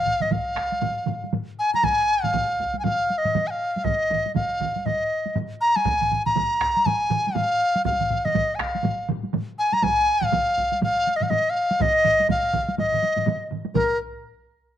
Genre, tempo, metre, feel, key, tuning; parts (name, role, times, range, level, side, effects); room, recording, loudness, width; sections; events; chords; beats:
japanese traditional, taiko drum ensemble; 121 BPM; 4/4; swing 60% on 16ths; A4 = 444 Hz
large dizi; melody; 0.0-14.0 s; Bb4 to Bb5; -21 LUFS; left 1 dB
taiko ensemble; percussion; 0.1-14.2 s; -32 LUFS; left 6 dB
taiko ensemble; percussion; 0.1-14.2 s; -30 LUFS; right 11 dB
taiko ensemble; percussion; 0.2-14.0 s; -30 LUFS; right 2 dB
taiko ensemble; percussion; 0.3-14.0 s; -34 LUFS; right 2 dB
moderate spring reverb, RT60 1.2 s, small room reverb; 1960s-style stereo with parts hard left and right; -20 LUFS; side -11 dB against mid
0.0-13.8 A section; 13.8-14.8 B section
speeding up 0.0-14.8
0.31 0.82 1.33 | 1.84 2.34 2.85 3.35 | 3.86 4.36 4.86 5.36 | 5.86 6.36 6.86 7.36 | 7.86 8.35 8.85 9.34 | 9.84 10.33 10.82 11.31 | 11.80 12.29 12.78 13.27 | 13.75